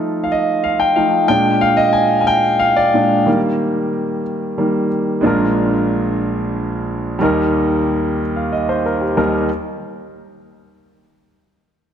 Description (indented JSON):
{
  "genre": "gospel",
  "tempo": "61 BPM (dotted quarters)",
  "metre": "6/8",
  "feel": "straight",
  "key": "Eb major",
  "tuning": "A4 = 440 Hz",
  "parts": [
    { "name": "clear grand piano", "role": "accompaniment", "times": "0.0-9.5 s", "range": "Bb1 to Ab5", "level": "-14 LUFS", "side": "equal", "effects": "none" }
  ],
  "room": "moderate concert hall reverb, RT60 2.3 s",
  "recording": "dark, warm production",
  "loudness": "-14 LUFS",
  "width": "side -8 dB against mid",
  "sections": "0.0-5.2 A section; 5.2-9.2 B section; 9.2-11.2 C section",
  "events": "grand piano solo 0.0-5.2",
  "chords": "0.0 F7; 1.3 Bb7; 3.3 Eb; 5.2 Bb7; 7.2 Eb"
}